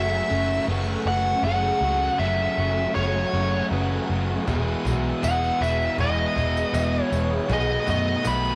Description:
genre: rock, shoegaze and dream pop.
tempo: 79 BPM.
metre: 4/4.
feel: straight.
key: E major.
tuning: A4 = 438 Hz.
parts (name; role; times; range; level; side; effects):
nasal lead guitar with a parked wah; melody; 0.0-8.6 s; C#5 to B5; -27 LUFS; equal; overdrive, cassette tape, analog delay.
phased string machine; sustained chords; 0.0-8.6 s; A3 to E6; -37 LUFS; equal; ensemble chorus, phaser, cassette tape.
fingerpicked twelve-string acoustic guitar; arpeggios; 0.0-8.6 s; F#4 to B4; -39 LUFS; equal; analog chorus, cassette tape, analog delay.
crunchy overdriven guitar; riff; 0.0-8.6 s; E2 to F#4; -36 LUFS; equal; none.
raw garage guitar; riff; 0.0-8.6 s; F#2 to E4; -33 LUFS; equal; overdrive, reverse reverb, cassette tape.
raw garage guitar; riff; 0.0-8.6 s; E2 to B3; -34 LUFS; equal; overdrive, cassette tape.
vintage muted picked electric bass; bass; 0.0-8.5 s; E1 to F#2; -29 LUFS; equal; none.
cajon; drums; 4.5-8.4 s; none; -36 LUFS; equal; none.
tambourine; percussion; 4.5-8.5 s; none; -46 LUFS; equal; none.
room: light reverb, studio ambience.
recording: home recording on cassette.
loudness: -23 LUFS.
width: mono.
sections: 0.0-8.6 A section.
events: none.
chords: 0.0 F#m7; 4.5 Emaj9; 7.5 B7.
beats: 0.68 | 1.43 2.19 2.95 3.70 | 4.46 5.21 5.97 6.73 | 7.48 8.24.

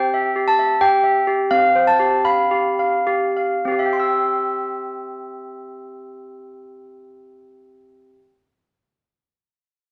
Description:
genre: classical, lullaby for handbells.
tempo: 63-91 BPM.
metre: 3/4.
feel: straight.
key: C major.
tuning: A4 = 440 Hz.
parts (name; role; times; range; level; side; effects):
handbells; solo; 0.0-8.5 s; C4 to E6; -20 LUFS; equal; none.
room: moderate studio reverb, RT60 0.8 s.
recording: none.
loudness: -18 LUFS.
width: mono.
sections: 0.0-4.0 A section; 4.0-9.7 B section.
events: slowing down 0.0-4.0.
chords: 0.0 C; 1.5 G7/C; 4.0 C.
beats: 0.13 0.81 | 1.50 2.24 3.06 | 3.99 4.94 5.89 | 6.84 7.79.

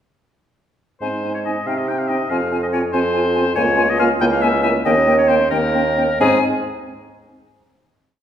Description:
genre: quick classical-period movement for wind quintet.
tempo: 92 BPM (dotted quarters).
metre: 6/8.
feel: rubato.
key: Ab major.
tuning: A4 = 443 Hz.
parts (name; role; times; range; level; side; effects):
silver concert flute; melody; 1.0-6.4 s; G5 to Ab5; -24 LUFS; left 6 dB; none.
bright oboe; second line; 1.0-6.4 s; Ab4 to G5; -22 LUFS; left 3 dB; none.
mellow French horn; accompaniment; 1.0-6.4 s; Bb3 to C4; -24 LUFS; left 1 dB; none.
mellow clarinet; accompaniment; 1.0-6.4 s; Db4 to F4; -27 LUFS; right 4 dB; none.
warm bassoon; bass; 1.0-6.4 s; Db2 to C3; -18 LUFS; right 2 dB; none.
room: wet recital hall reverb, RT60 1.6 s.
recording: heard from further back in the room.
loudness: -15 LUFS.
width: side -9 dB against mid.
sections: 1.0-6.2 A section; 6.2-7.5 final chord.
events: none.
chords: 1.0 Ab; 1.7 Cm; 2.3 Fm; 3.6 Bbm/Db; 4.2 Bbdim/Db; 4.9 Eb7; 6.2 Ab.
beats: | 1.02 1.67 | 2.31 2.94 | 3.57 4.21 | 4.85 5.51 | 6.20.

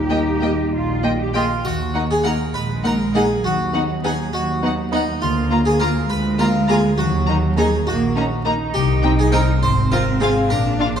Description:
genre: cinematic, playful, whimsical film cue.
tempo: 68 BPM (dotted quarters).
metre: 6/8.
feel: straight.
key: Eb minor.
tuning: A4 = 440 Hz.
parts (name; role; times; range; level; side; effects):
clear clarinet; second line; 0.0-1.3 s; Eb4; -24 LUFS; equal; none.
warm French horn section; sustained chords; 0.0-1.3 s; G3 to Eb4; -30 LUFS; left 2 dB; none.
concert harp; arpeggios; 0.0-11.0 s; Ab2 to Bb5; -24 LUFS; left 6 dB; none.
rich studio cello section; bass; 0.0-11.0 s; F#3 to Ab4; -24 LUFS; right 2 dB; none.
rich studio double bass section; bass; 0.0-11.0 s; Ab1 to Eb2; -23 LUFS; right 3 dB; none.
rich studio violin section; melody; 0.1-10.9 s; F5 to Bb5; -28 LUFS; left 4 dB; none.
rich studio violin section; second line; 0.1-10.9 s; Eb4 to Eb5; -28 LUFS; left 1 dB; none.
rich studio viola section; accompaniment; 0.1-10.9 s; Bb3 to D4; -27 LUFS; right 1 dB; none.
harpsichord; melody; 1.4-11.0 s; D#4 to C5; -22 LUFS; equal; none.
triangle; percussion; 1.6-2.8 s; none; -43 LUFS; left 1 dB; none.
room: moderate scoring stage reverb, RT60 1.9 s.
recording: dark, warm production.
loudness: -16 LUFS.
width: side -8 dB against mid.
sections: 0.0-1.7 A section; 1.7-11.0 B section.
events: none.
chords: 0.0 Eb; 1.7 Ebm; 3.4 B/D#; 5.2 Bb/D; 7.0 Ebm; 8.7 Cm; 9.6 Fm/Ab.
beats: 0.73 | 1.65 2.54 | 3.44 4.33 | 5.22 6.10 | 6.99 7.87 | 8.75 9.63 | 10.51.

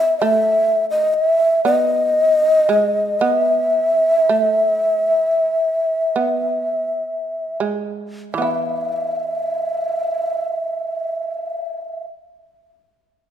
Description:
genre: japanese traditional, Japanese chamber music.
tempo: 40-65 BPM.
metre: 4/4.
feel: rubato.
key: E ryukyu.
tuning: A4 = 440 Hz.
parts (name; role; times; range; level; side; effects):
breathy mellow long shakuhachi; melody; 0.0-12.0 s; D#5 to E5; -17 LUFS; equal; none.
shamisen; second line; 0.0-12.1 s; E3 to E4; -24 LUFS; right 6 dB; none.
room: light reverb.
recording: minimal, uncompressed stereo recording.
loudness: -16 LUFS.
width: side -10 dB against mid.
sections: 0.0-8.4 A section; 8.4-13.3 B section.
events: slowing down 0.0-8.4.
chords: none.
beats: 0.21 1.15 2.15 | 3.20 4.30 5.51 6.87 | 8.35 9.81 11.20.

